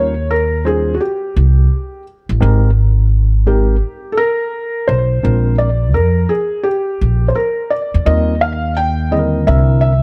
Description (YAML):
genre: hip hop, jazz-hop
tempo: 85 BPM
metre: 4/4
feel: swing 66% on 16ths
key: Eb major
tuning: A4 = 440 Hz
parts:
  - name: felt-muted upright piano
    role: melody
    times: 0.0-10.0 s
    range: Gb4 to G5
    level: -20 LUFS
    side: equal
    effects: slapback echo
  - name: mellow tine electric piano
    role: accompaniment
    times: 0.0-10.0 s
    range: D3 to C5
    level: -23 LUFS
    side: equal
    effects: overdrive
  - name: upright bass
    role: bass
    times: 0.0-10.0 s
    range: Ab1 to F2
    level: -15 LUFS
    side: equal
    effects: none
room: small room reverb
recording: none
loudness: -15 LUFS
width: mono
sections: 0.0-10.0 A section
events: none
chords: 0.0 Eb7; 2.4 Abmaj7; 5.2 Bb7; 8.1 Eb6; 9.5 C7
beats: 0.30 1.00 1.71 | 2.41 3.12 3.83 4.53 | 5.24 5.94 6.65 7.36 | 8.06 8.77 9.47